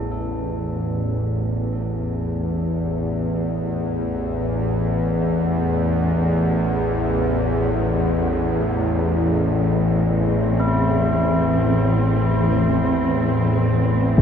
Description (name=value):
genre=dark ambient drone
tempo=free time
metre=none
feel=none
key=A minor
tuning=A4 = 440 Hz
part: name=tubular bells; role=arpeggios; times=0.0-14.2 s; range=E4 to A4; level=-29 LUFS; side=right 1 dB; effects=ping-pong delay
part: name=bowed-like drone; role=drone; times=0.0-14.2 s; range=A1 to E2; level=-20 LUFS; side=equal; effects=built-in reverb
part: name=bronze singing bowl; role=texture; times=0.0-14.2 s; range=E4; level=-38 LUFS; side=equal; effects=none
part: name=muted studio cello section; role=sustained chords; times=7.8-14.2 s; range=A2 to C4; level=-21 LUFS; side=left 1 dB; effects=stereo widening
part: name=impact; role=percussion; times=14.2 s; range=none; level=-10 LUFS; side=equal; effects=low-pass filter on sfx
room=wet cathedral reverb, RT60 5.7 s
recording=in a vast, echoing space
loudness=-18 LUFS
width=side -8 dB against mid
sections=0.0-14.2 A section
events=fade-in on tubular bells 0.0-14.2; filter sweep on synth drone 0.0-14.2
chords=0.0 Am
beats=free time